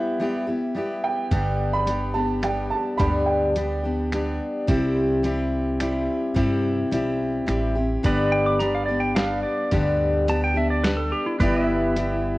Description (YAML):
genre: honky-tonk and classic country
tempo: 107 BPM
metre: 3/4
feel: straight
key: G major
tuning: A4 = 445 Hz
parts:
  - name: picked steel-string acoustic guitar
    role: accompaniment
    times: 0.0-12.4 s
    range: G2 to G4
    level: -23 LUFS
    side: left 1 dB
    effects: cassette tape
  - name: dark upright piano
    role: second line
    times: 1.0-4.3 s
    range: G5 to B5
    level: -27 LUFS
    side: right 4 dB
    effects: cassette tape
  - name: upright bass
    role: bass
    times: 1.3-12.4 s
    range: G1 to G2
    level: -27 LUFS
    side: equal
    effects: none
  - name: lo-fi sampler-style drum kit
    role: drums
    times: 1.3-12.1 s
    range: finger snaps, hi-hat, kick drum, snare drum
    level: -25 LUFS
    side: equal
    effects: none
  - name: pedal steel guitar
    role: sustained chords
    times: 8.1-12.4 s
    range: B4 to E5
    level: -30 LUFS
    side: right 2 dB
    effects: cassette tape
  - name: pedal steel guitar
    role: melody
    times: 8.3-12.4 s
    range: E4 to D6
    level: -26 LUFS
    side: right 1 dB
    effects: none
room: light reverb, studio ambience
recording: home recording on cassette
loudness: -20 LUFS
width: side -19 dB against mid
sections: 0.0-8.0 A section; 8.0-12.4 B section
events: upright piano solo 0.0-8.0; pedal steel guitar solo 8.0-12.4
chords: 0.0 Em/G; 1.3 G; 4.7 C; 8.0 G; 11.4 Em/G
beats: 0.20 0.76 | 1.32 1.88 2.44 | 3.00 3.56 4.12 | 4.68 5.24 5.80 | 6.36 6.92 7.48 | 8.04 8.60 9.16 | 9.72 10.28 10.84 | 11.40 11.96